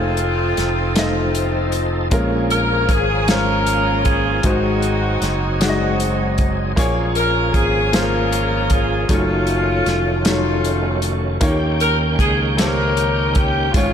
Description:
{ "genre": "slow gospel", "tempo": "52 BPM (dotted quarters)", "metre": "6/8", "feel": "straight", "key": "unclear", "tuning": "A4 = 440 Hz", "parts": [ { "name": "clear saxophone section", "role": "melody", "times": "0.0-13.9 s", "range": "Ab3 to Bb4", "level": "-20 LUFS", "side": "left 1 dB", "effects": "slapback echo, tape echo" }, { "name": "warm baby grand piano", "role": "accompaniment", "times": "0.0-13.9 s", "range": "Ab2 to Eb5", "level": "-23 LUFS", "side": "left 2 dB", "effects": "none" }, { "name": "overdriven tonewheel organ", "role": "sustained chords", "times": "0.0-13.9 s", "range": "Eb3 to G5", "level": "-25 LUFS", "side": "right 1 dB", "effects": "slow rotary speaker, chorus vibrato" }, { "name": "fingered electric bass", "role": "bass", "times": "0.0-13.9 s", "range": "F1 to Eb2", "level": "-22 LUFS", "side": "equal", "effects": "none" }, { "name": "warm soul drum kit", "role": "drums", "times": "0.2-13.9 s", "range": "hi-hat, kick drum, snare drum", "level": "-21 LUFS", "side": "equal", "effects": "none" } ], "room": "moderate lush hall reverb, RT60 2.5 s", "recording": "big arena sound", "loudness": "-15 LUFS", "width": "side -8 dB against mid", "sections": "0.0-13.9 A section", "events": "none", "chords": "0.0 F7; 2.1 Bbm7; 4.4 Ab7; 6.8 Bbm7; 9.1 Gbm6; 11.4 Eb7" }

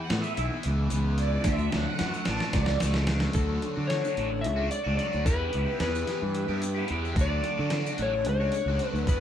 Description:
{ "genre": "psychedelic rock", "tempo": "220 BPM (eighths)", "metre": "7/8", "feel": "straight", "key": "unclear", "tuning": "A4 = 439 Hz", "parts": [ { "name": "string machine, violins", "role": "sustained chords", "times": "0.0-9.2 s", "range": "D4 to A5", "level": "-36 LUFS", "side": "right 4 dB", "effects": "ensemble chorus" }, { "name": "crunchy overdriven guitar", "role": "riff", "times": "0.0-9.2 s", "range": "D3 to G4", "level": "-34 LUFS", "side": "equal", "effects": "phaser" }, { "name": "fuzz fingered electric bass", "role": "bass", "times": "0.1-9.2 s", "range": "A1 to D3", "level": "-28 LUFS", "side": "equal", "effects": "overdrive" }, { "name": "dusty soul sampler-style drum kit", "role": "drums", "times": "0.1-9.2 s", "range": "hi-hat, kick drum, snare drum", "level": "-30 LUFS", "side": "equal", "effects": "none" }, { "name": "maracas", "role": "percussion", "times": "0.2-9.2 s", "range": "none", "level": "-44 LUFS", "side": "left 3 dB", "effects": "none" }, { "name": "electric slide guitar", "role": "melody", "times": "3.3-9.2 s", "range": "A4 to E5", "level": "-30 LUFS", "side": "left 4 dB", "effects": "none" } ], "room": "moderate small room reverb, RT60 0.5 s", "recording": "band playing live in one room", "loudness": "-25 LUFS", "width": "side -10 dB against mid", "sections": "0.0-3.4 A section; 3.4-9.2 B section", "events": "string machine solo 0.0-3.4; drum fill 1.5-3.4", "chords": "0.0 E5; 1.5 Dmaj7; 5.3 Emadd9; 7.2 Dmaj7" }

